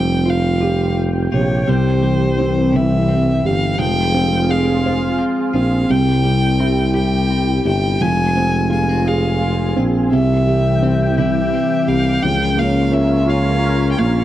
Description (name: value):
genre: pop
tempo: 57 BPM (dotted quarters)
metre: 6/8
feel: straight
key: F harmonic minor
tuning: A4 = 440 Hz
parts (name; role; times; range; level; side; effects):
- warm violin; melody; 0.0-14.2 s; C5 to Ab5; -22 LUFS; equal; tape echo
- warm grand piano; accompaniment; 0.0-14.2 s; C3 to C5; -19 LUFS; right 2 dB; none
- sweeping resonant pad; sustained chords; 0.0-14.2 s; E3 to Ab5; -24 LUFS; left 2 dB; chorus
- twelve-string electric guitar; arpeggios; 0.0-14.2 s; F3 to F4; -27 LUFS; left 12 dB; none
- mellow tuba; bass; 0.0-14.2 s; F1 to Db2; -18 LUFS; equal; none
room: small room ambience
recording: dry, close 1970s-style studio recording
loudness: -14 LUFS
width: side -13 dB against mid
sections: 0.0-14.2 A section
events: none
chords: 0.0 Fsus2; 1.7 C; 3.8 Fm; 5.9 C; 8.0 Fm; 10.1 C; 12.2 Bbm/Db